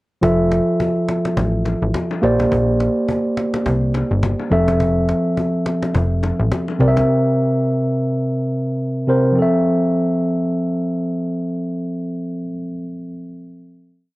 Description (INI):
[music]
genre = afrobeats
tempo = 105 BPM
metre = 4/4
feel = swing 58% on 16ths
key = F major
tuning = A4 = 440 Hz
[part]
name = mellow tine electric piano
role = accompaniment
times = 0.2-14.2 s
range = C3 to E5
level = -18 LUFS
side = equal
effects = none
[part]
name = plucky analog bass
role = bass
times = 0.2-7.0 s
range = F1 to C2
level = -19 LUFS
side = equal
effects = none
[part]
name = cajon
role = drums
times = 0.2-7.1 s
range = none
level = -27 LUFS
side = equal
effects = none
[part]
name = congas and bongos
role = percussion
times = 0.2-7.1 s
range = none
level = -30 LUFS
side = left 5 dB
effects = none
[sound]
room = light reverb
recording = worn, warbling old tape, cassette tape, warbly pitch drift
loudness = -16 LUFS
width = side -20 dB against mid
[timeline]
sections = 0.2-9.4 verse; 9.4-11.7 final chord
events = none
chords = 0.2 Fmaj7; 2.2 Bb69; 4.5 Fmaj7; 6.8 C7; 9.4 Fmaj7